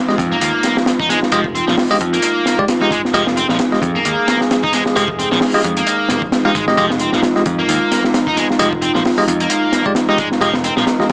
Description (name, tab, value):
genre	breakbeat, breaks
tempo	132 BPM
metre	4/4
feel	swing 57% on 16ths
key	F minor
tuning	A4 = 439 Hz
part	dark analog pad	sustained chords	0.0-11.1 s	Ab3 to Bb4	-23 LUFS	equal	lush chorus, sidechain pumping
part	bell-like tine electric piano	stabs	0.1-11.1 s	Ab3 to F5	-20 LUFS	equal	vintage 12-bit sampler grit, tape echo
part	crunchy breakbeat drum kit	drums	0.1-11.1 s	hi-hat, kick drum, snare drum	-20 LUFS	equal	none
part	modern bright picked electric bass	bass	0.2-11.1 s	F1 to F2	-25 LUFS	equal	none
part	distorted electric guitar	riff	0.3-10.8 s	F3 to Eb4	-21 LUFS	equal	distortion, tube saturation, tape echo
room	light reverb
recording	small speaker sound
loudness	-16 LUFS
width	mono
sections	0.0-11.1 A section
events	none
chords	0.0 Fm7